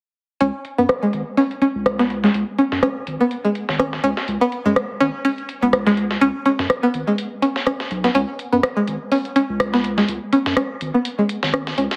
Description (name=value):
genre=minimal techno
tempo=124 BPM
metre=4/4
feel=swing 56% on 16ths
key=unclear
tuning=A4 = 436 Hz
part: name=string-like resonator pluck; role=riff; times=0.4-11.8 s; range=G#3 to C#4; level=-21 LUFS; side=equal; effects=chorus, phaser, dub echo
part: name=saturated sub bass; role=bass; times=0.4-11.9 s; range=G#1 to F#2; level=-28 LUFS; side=equal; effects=high-pass filter
part: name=breakbeat sampler-style drum kit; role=drums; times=0.4-12.0 s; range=hi-hat, snare drum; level=-29 LUFS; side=equal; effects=high-pass filter on hats, low-pass filter on hats, high-pass filter on snare, low-pass filter on snare
part: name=garage drum kit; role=drums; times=0.6-12.0 s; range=hi-hat, rim click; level=-25 LUFS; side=equal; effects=low-pass filter on hats, soft clipping on snare, low-pass filter on snare
room=moderate plate reverb, RT60 1.8 s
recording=dense, heavily limited modern master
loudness=-20 LUFS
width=mono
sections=0.4-12.0 A section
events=none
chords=0.4 C#5